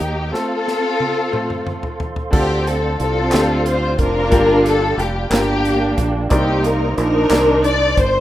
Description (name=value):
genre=slow gospel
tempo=60 BPM (dotted quarters)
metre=6/8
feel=straight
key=unclear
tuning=A4 = 440 Hz
part: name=dark symphonic string section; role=melody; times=0.0-8.2 s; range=Bb3 to D5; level=-17 LUFS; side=left 1 dB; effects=slapback echo
part: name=bright upright piano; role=accompaniment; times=0.0-8.2 s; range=G2 to D5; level=-25 LUFS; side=left 1 dB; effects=none
part: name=mellow tonewheel organ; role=sustained chords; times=0.0-8.2 s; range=Bb3 to Eb6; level=-29 LUFS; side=right 4 dB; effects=chorus vibrato, stopped rotary speaker
part: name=fingered electric bass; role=bass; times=0.0-8.2 s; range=F1 to Eb2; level=-21 LUFS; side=equal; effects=none
part: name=natural country drum kit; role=drums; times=0.3-8.1 s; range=crash cymbal, hi-hat, kick drum, snare drum, toms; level=-22 LUFS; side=right 1 dB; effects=none
part: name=group handclap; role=percussion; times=3.3-7.6 s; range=none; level=-27 LUFS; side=equal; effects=none
room=light reverb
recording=rough home demo mix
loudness=-15 LUFS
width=side -13 dB against mid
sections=0.0-2.3 A section; 2.3-8.2 B section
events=drum fill 0.3-2.3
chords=0.3 F; 2.3 Dm7; 4.3 Gm7; 6.3 Cm9